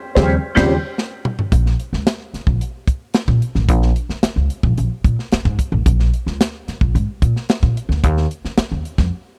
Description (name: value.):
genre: funk.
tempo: 110 BPM.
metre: 4/4.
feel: straight.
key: unclear.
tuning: A4 = 440 Hz.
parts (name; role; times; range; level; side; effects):
clean electric guitar; accompaniment; 0.2-0.8 s; Db4 to C5; -24 LUFS; equal; wah, spring reverb.
mellow tine electric piano; stabs; 0.2-0.8 s; Db3 to C4; -22 LUFS; equal; phaser.
upright bass; bass; 0.2-9.1 s; A1 to Bb2; -20 LUFS; equal; none.
tight funk drum kit; drums; 0.2-9.1 s; crash cymbal, hi-hat, kick drum, snare drum, toms; -20 LUFS; equal; none.
room: little or no reverb.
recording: dry, close 1970s-style studio recording.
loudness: -18 LUFS.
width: mono.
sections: 0.0-1.5 A section; 1.5-9.4 B section.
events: band accent 0.0-1.5; drum fill 1.0-1.5; break 9.1.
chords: 0.0 Eb13; 1.5 N.C..